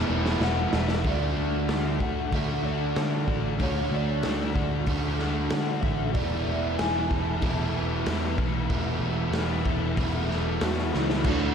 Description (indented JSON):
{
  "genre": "rock, shoegaze and dream pop",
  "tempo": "94 BPM",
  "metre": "4/4",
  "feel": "straight",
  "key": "D major",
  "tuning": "A4 = 439 Hz",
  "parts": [
    { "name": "electric guitar through a small old amp", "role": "melody", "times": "0.0-11.5 s", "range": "D4 to A5", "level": "-33 LUFS", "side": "equal", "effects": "analog chorus, ping-pong delay" },
    { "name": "overdriven semi-hollow guitar", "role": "riff", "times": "0.0-11.5 s", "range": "E2 to F#4", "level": "-31 LUFS", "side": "left 7 dB", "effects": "analog chorus" },
    { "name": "overdriven semi-hollow guitar", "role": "riff", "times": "0.0-11.5 s", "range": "E2 to F#4", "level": "-31 LUFS", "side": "right 7 dB", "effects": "reverse reverb" },
    { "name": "vintage muted picked electric bass", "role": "bass", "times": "0.1-11.5 s", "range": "E1 to D3", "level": "-30 LUFS", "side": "equal", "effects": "none" },
    { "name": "raw garage drum kit", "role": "drums", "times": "0.3-11.4 s", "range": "crash cymbal, hi-hat, kick drum, snare drum", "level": "-30 LUFS", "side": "equal", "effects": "none" }
  ],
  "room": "moderate lush hall reverb, RT60 2.1 s",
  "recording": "dreamy mix soaked in reverb",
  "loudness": "-24 LUFS",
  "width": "side -7 dB against mid",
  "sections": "0.0-1.1 A section; 1.1-11.3 B section",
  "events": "drum fill 0.0-1.1, 10.9-11.3",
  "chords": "0.0 Esus4; 1.1 D; 6.2 Esus4",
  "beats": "0.41 | 1.05 1.69 2.33 2.96 | 3.60 4.24 4.88 5.52 | 6.16 6.80 7.44 8.07 | 8.71 9.35 9.99 10.62 | 11.26"
}